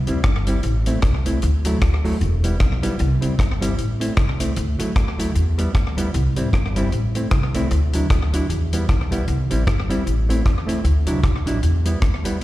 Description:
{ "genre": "ska", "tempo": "153 BPM", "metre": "4/4", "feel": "swing 58% on 8ths", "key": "E minor", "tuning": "A4 = 439 Hz", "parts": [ { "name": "upright bass", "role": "bass", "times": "0.0-12.4 s", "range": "E1 to E2", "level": "-20 LUFS", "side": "equal", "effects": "none" }, { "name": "hollow-body jazz guitar", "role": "accompaniment", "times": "0.1-12.4 s", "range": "F#3 to E4", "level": "-25 LUFS", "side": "equal", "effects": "slapback echo" }, { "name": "deep reggae drum kit", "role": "drums", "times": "0.1-12.4 s", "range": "hi-hat, kick drum, rim click", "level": "-21 LUFS", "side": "equal", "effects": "slapback echo" } ], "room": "little or no reverb", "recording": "live gig heard through the venue's PA, recital hall reverb", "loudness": "-18 LUFS", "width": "side -16 dB against mid", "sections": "0.0-12.4 A section", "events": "none", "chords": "0.0 C; 0.6 Am; 1.4 Dadd9; 2.2 Em; 3.0 C; 3.8 Am; 4.6 Dadd9; 5.4 Em; 6.1 C; 6.9 Am; 7.7 Dadd9; 8.5 Em; 9.3 C; 10.1 Am; 10.8 Dadd9; 11.6 Em", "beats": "0.24 | 0.64 1.03 1.42 1.82 | 2.21 2.60 3.00 3.39 | 3.78 4.17 4.57 4.96 | 5.35 5.75 6.14 6.53 | 6.92 7.32 7.71 8.10 | 8.49 8.89 9.28 9.67 | 10.06 10.46 10.85 11.24 | 11.63 12.03 12.42" }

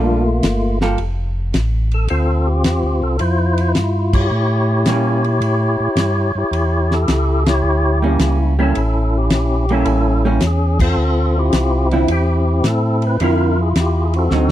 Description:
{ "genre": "soul jazz organ trio", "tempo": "108 BPM", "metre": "4/4", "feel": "swing 69% on 8ths", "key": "D harmonic minor", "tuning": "A4 = 440 Hz", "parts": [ { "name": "percussive tonewheel organ", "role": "melody", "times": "0.0-14.5 s", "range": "A3 to C#5", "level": "-19 LUFS", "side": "left 1 dB", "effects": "slow rotary speaker, overdrive" }, { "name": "vintage hollow-body jazz guitar", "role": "accompaniment", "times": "0.0-1.0, 4.9-14.5 s", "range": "D3 to A4", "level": "-20 LUFS", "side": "right 3 dB", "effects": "none" }, { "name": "mellow tonewheel organ", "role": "bass", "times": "0.0-14.5 s", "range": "F1 to Bb2", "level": "-17 LUFS", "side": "equal", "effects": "slow rotary speaker" }, { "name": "warm soul drum kit", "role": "drums", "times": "0.4-14.5 s", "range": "crash cymbal, hi-hat, kick drum, ride cymbal, snare drum", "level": "-21 LUFS", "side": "left 1 dB", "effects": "none" } ], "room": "small room ambience", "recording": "none", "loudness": "-14 LUFS", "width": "side -12 dB against mid", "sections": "0.0-14.5 A section", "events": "band accent 4.0, 7.4, 10.7; drum fill 14.3", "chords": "0.0 Gm9; 2.1 Dm9; 4.3 A7b9; 11.0 Dm9", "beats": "0.43 0.99 1.54 | 2.10 2.65 3.21 3.76 | 4.32 4.87 5.42 5.98 | 6.53 7.09 7.64 8.20 | 8.76 9.31 9.87 10.42 | 10.97 11.53 12.08 12.64 | 13.19 13.75 14.30" }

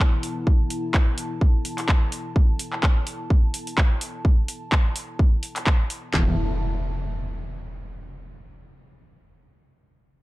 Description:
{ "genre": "bass house", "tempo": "127 BPM", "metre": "4/4", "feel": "swing 56% on 16ths", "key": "unclear", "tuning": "A4 = 440 Hz", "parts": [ { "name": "dark analog pad", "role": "sustained chords", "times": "0.0-6.4 s", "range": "B3 to A5", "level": "-34 LUFS", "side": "left 2 dB", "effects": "chorus, sidechain pumping" }, { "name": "garage drum kit", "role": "drums", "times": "0.0-6.0 s", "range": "handclaps, hi-hat", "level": "-27 LUFS", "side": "equal", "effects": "none" }, { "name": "house drum kit", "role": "drums", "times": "0.0-6.3 s", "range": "handclaps, kick drum", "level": "-18 LUFS", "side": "equal", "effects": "none" }, { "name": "metallic wobble bass", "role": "bass", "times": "6.1-6.4 s", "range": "E1", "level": "-23 LUFS", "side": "equal", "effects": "distortion, chorus, tube saturation, sidechain pumping" }, { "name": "impact", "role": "sound effects", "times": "6.1-8.0 s", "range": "none", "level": "-30 LUFS", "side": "equal", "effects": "none" } ], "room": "little or no reverb", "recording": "dark, warm production", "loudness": "-20 LUFS", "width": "side -19 dB against mid", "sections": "0.0-6.1 A section; 6.1-8.0 B section", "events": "filter sweep on analog synth pad 0.0-6.1", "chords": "0.0 E5", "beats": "0.00 | 0.47 0.94 1.41 1.89 | 2.36 2.83 3.30 3.78 | 4.25 4.72 5.19 5.67 | 6.14 6.61 7.08 7.55" }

